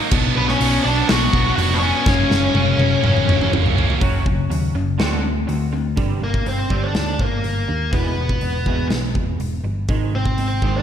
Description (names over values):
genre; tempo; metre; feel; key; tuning
quiet-loud alternative rock; 123 BPM; 4/4; straight; unclear; A4 = 440 Hz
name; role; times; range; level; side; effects
distorted electric guitar; riff; 0.0-6.0 s; F#2 to D4; -25 LUFS; left 8 dB; distortion
distorted electric guitar; riff; 0.0-4.0 s; F#2 to D4; -22 LUFS; right 12 dB; overdrive
hollow-body short-scale picked electric bass; bass; 0.1-10.8 s; E1 to Eb2; -22 LUFS; equal; none
big rock drum kit; drums; 0.1-10.7 s; crash cymbal, hi-hat, kick drum, snare drum, toms; -21 LUFS; equal; none
octave-fuzz lead guitar; melody; 0.4-10.8 s; Bb3 to F#5; -22 LUFS; left 2 dB; distortion, slapback echo
twangy electric guitar; arpeggios; 4.0-10.8 s; E2 to F#4; -28 LUFS; right 6 dB; analog chorus, slapback echo, tape echo
room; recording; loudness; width
moderate lush hall reverb, RT60 1.6 s, small room ambience; big arena sound; -16 LUFS; side -9 dB against mid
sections
0.0-4.0 A section; 4.0-6.0 B section; 6.0-10.8 C section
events
drum fill 2.1-4.0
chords
0.1 Bm; 2.1 F#; 4.0 F#5; 5.0 D7; 6.0 Gm; 7.9 Em; 9.9 Ab